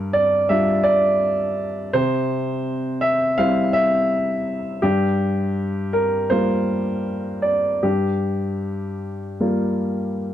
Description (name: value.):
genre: neoclassical minimalist piano.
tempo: 76-85 BPM.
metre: 4/4.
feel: rubato.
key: G dorian.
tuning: A4 = 440 Hz.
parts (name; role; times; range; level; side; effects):
warm baby grand piano; solo; 0.0-10.3 s; G2 to F5; -18 LUFS; equal; none.
room: moderate small room reverb, RT60 0.5 s.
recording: dark, warm production.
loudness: -18 LUFS.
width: side -11 dB against mid.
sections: 0.0-10.3 A section.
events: none.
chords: 0.0 Gm7; 1.9 C; 4.8 Gm7.